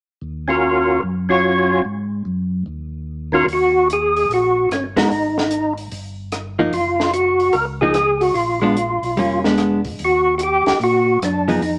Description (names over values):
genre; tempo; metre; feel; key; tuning
soul jazz organ trio; 148 BPM; 4/4; swing 66% on 8ths; Eb minor; A4 = 436 Hz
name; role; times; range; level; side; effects
mellow tonewheel organ; bass; 0.2-11.8 s; F1 to Bb2; -29 LUFS; equal; overdrive, chorus vibrato, slow rotary speaker
percussive tonewheel organ; melody; 0.5-11.8 s; Eb3 to Db5; -18 LUFS; equal; slow rotary speaker, overdrive, chorus vibrato
compact cocktail drum kit; drums; 3.5-11.7 s; hi-hat, kick drum, rim click, snare drum; -29 LUFS; equal; none
hollow-body jazz guitar; accompaniment; 5.0-11.6 s; F3 to Bb4; -21 LUFS; equal; none
room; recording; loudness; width
moderate studio reverb, RT60 1.0 s; none; -18 LUFS; mono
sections
0.2-3.5 A section; 3.5-11.8 B section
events
none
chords
0.2 Ebm7; 1.9 Ab5; 3.5 Ebm; 5.1 Ab5; 5.9 Gm7; 6.7 Gbmaj7sus2; 8.4 Bb7b9; 10.0 Eb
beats
| 0.22 0.63 1.03 1.44 | 1.85 2.26 2.66 3.07 | 3.48 3.88 4.29 4.70 | 5.10 5.51 5.92 6.32 | 6.73 7.14 7.54 7.95 | 8.36 8.76 9.17 9.58 | 9.98 10.39 10.80 11.21 | 11.61